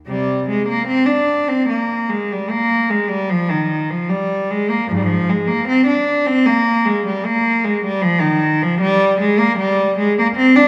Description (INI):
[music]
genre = classical, baroque-style suite movement for unaccompanied cello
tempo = 76 BPM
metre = 3/4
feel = rubato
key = unclear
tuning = A4 = 438 Hz
[part]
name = warm cello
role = solo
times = 0.1-10.7 s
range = Ab2 to D4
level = -17 LUFS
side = equal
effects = none
[sound]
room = wet scoring stage reverb, RT60 1.6 s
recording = recorded in a church or concert hall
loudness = -17 LUFS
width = mono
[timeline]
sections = 0.1-10.7 A section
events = none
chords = none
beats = | 0.09 0.90 1.70 | 2.50 3.31 4.09 | 4.89 5.67 6.46 | 7.25 8.04 8.82 | 9.60 10.38